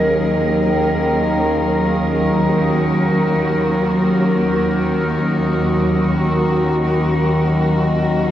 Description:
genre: dark ambient drone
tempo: free time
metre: none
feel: none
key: unclear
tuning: A4 = 440 Hz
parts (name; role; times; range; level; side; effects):
- rich symphonic cello section; sustained chords; 0.0-8.3 s; Eb2 to Bb4; -17 LUFS; equal; none
- overtone-sweeping drone; drone; 0.0-8.3 s; Eb2 to Eb3; -18 LUFS; equal; chorus, built-in reverb
room: wet cathedral reverb, RT60 4.8 s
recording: worn, warbling old tape, cassette tape, warbly pitch drift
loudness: -14 LUFS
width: side -11 dB against mid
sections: 0.0-8.3 A section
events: none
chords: 0.0 Gbadd9/Eb

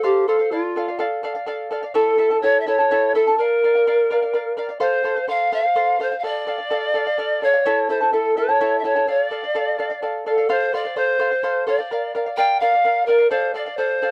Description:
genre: andean folk, Andean ensemble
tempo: 84 BPM (dotted quarters)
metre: 6/8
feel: straight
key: D minor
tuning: A4 = 440 Hz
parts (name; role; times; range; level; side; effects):
- bright reedy pan flute; melody; 0.0-14.1 s; F4 to G5; -21 LUFS; equal; none
- charango; accompaniment; 0.0-14.1 s; E4 to A5; -25 LUFS; equal; none
room: light reverb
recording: dry, close 1970s-style studio recording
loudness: -20 LUFS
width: mono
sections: 0.0-10.5 A section; 10.5-14.1 B section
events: none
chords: 0.0 F; 0.5 Dm; 2.0 A; 3.4 Bb; 4.8 F; 6.2 Dm; 7.7 A; 9.1 Dm; 10.5 F; 11.9 Bb; 13.3 Dm

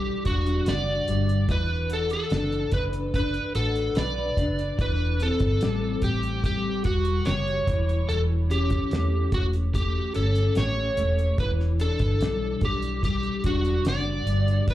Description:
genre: indie pop, bedroom pop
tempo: 73 BPM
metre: 4/4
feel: straight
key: E minor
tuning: A4 = 440 Hz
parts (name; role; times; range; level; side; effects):
- overdriven slide guitar; melody; 0.0-14.7 s; F#4 to D5; -28 LUFS; equal; analog chorus, slapback echo, tape echo
- electric guitar through a small old amp; accompaniment; 0.0-14.7 s; E3 to B4; -30 LUFS; left 3 dB; ensemble chorus, vibrato effect, slapback echo
- vintage muted fingered electric bass; bass; 0.0-14.7 s; E1 to E2; -26 LUFS; equal; none
- cloth-damped thuddy drum kit; drums; 0.3-14.7 s; hi-hat, kick drum, snare drum; -27 LUFS; equal; none
room: light reverb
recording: live gig heard through the venue's PA, club reverb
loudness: -22 LUFS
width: side -14 dB against mid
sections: 0.0-14.7 A section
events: none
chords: 0.0 Em9; 1.5 Bm7/E; 4.8 Am13/E; 7.7 A7/E; 11.4 Em9

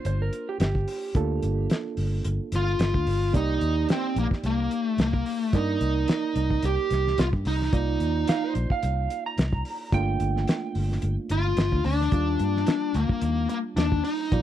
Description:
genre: straight-eighth soul blues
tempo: 109 BPM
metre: 4/4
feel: swing 55% on 16ths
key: unclear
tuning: A4 = 440 Hz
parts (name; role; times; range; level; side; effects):
- electric slide guitar; second line; 0.0-1.7, 8.3-11.1 s; G4 to Bb5; -32 LUFS; right 6 dB; none
- reed electric piano; accompaniment; 0.0-14.4 s; G3 to D5; -33 LUFS; right 5 dB; none
- cloth-damped thuddy drum kit; drums; 0.0-14.4 s; hi-hat, kick drum, snare drum; -27 LUFS; equal; none
- vintage muted fingered electric bass; bass; 0.1-14.4 s; G1 to G2; -26 LUFS; equal; none
- smooth overdriven lead guitar; melody; 2.6-14.4 s; Bb3 to G4; -27 LUFS; left 1 dB; none
room: little or no reverb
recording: dry, close 1970s-style studio recording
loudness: -23 LUFS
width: side -11 dB against mid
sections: 0.0-14.4 A section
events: none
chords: 0.0 Gm7; 3.3 Cm7; 9.9 Gm7; 12.1 Ebmaj7

